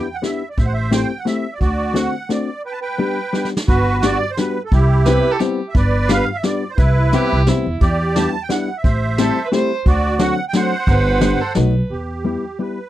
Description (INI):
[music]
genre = musette waltz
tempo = 175 BPM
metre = 3/4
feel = swing 55% on 8ths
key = G major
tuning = A4 = 441 Hz
[part]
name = musette accordion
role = melody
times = 0.0-12.9 s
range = E4 to A5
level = -22 LUFS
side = right 3 dB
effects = none
[part]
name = hollow-body jazz guitar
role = accompaniment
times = 0.0-12.8 s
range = D3 to G4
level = -19 LUFS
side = left 4 dB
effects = none
[part]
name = vintage brush drum kit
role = drums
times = 0.2-11.6 s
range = hi-hat, kick drum, snare drum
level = -19 LUFS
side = equal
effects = none
[part]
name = upright bass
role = bass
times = 0.6-12.3 s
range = G1 to E2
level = -18 LUFS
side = equal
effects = none
[part]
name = dark violin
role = second line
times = 5.1-11.9 s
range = E4 to C5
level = -23 LUFS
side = right 4 dB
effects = none
[sound]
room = little or no reverb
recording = dry, close 1970s-style studio recording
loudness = -15 LUFS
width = side -14 dB against mid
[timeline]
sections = 0.0-3.7 A section; 3.7-11.9 A section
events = drum fill 3.3-3.7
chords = 0.0 Em7; 0.6 Am7; 1.6 D7; 2.6 G; 3.7 Gmaj7; 4.7 Cmaj7; 5.8 G7; 6.8 Cmaj7; 7.8 Em7; 8.8 Am7; 9.9 D7; 10.9 G; 11.6 B7; 11.9 Em